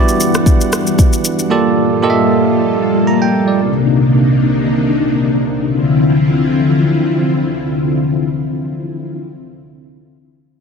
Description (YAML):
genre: amapiano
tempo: 115 BPM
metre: 4/4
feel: swing 55% on 16ths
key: unclear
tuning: A4 = 440 Hz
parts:
  - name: bell-like tine electric piano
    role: accompaniment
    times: 0.0-3.7 s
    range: Bb3 to Bb5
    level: -15 LUFS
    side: right 4 dB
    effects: none
  - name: string machine, cellos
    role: sustained chords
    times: 0.0-9.2 s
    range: C3 to F#5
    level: -13 LUFS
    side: left 2 dB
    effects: ensemble chorus
  - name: deep house drum kit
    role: drums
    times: 0.1-1.5 s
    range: kick drum, rim click, shaker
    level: -12 LUFS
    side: equal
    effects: soft clipping on snare
room: moderate lush hall reverb, RT60 1.8 s, digital ambience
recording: dense, heavily limited modern master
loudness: -11 LUFS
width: side -5 dB against mid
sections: 0.0-5.7 A section; 5.7-9.9 B section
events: none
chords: 0.0 Em9; 1.5 Gm9; 3.6 Cm9; 5.7 Dm9